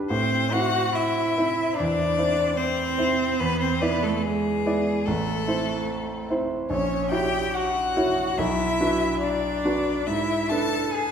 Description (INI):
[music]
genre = classical, slow romantic movement for piano trio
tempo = 72 BPM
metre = 4/4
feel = rubato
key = unclear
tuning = A4 = 440 Hz
[part]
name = clear concert grand piano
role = accompaniment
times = 0.0-11.1 s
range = A1 to D5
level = -26 LUFS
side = right 1 dB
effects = none
[part]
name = rich violin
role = melody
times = 0.1-11.1 s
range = G#4 to A5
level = -26 LUFS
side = left 6 dB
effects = none
[part]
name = rich cello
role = second line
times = 0.1-11.1 s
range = G#3 to A4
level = -27 LUFS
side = right 4 dB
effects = none
[sound]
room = wet scoring stage reverb, RT60 2.0 s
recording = recorded in a church or concert hall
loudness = -22 LUFS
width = side -7 dB against mid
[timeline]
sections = 0.0-11.1 A section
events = none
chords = 0.1 Am; 3.4 E7; 5.1 Am; 6.7 F#7/A#; 8.4 Bm; 10.1 E7/G#